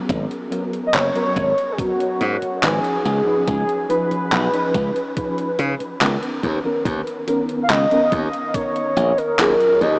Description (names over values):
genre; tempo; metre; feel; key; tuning
vaporwave; 71 BPM; 4/4; straight; Eb minor; A4 = 440 Hz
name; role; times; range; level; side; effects
mellow FM electric piano; accompaniment; 0.0-10.0 s; Eb3 to Cb5; -24 LUFS; equal; phaser, ensemble chorus, diffuse ambient delay
glassy slap bass; bass; 0.1-10.0 s; Gb1 to Db3; -21 LUFS; equal; none
detuned 8-bit digital drum machine; drums; 0.1-10.0 s; handclaps, hi-hat; -25 LUFS; equal; studio reverb
electronic kick drum; drums; 0.1-8.7 s; none; -28 LUFS; equal; studio reverb
warm velvety synth lead; melody; 0.9-10.0 s; Gb4 to F5; -20 LUFS; equal; chorus, tape echo
room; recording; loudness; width
wet huge ambient reverb, RT60 7.2 s; dreamy mix soaked in reverb, cassette tape, small speaker sound; -17 LUFS; side -30 dB against mid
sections
0.0-10.0 A section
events
none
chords
0.1 Abm11; 3.1 Db9; 6.4 Ebm11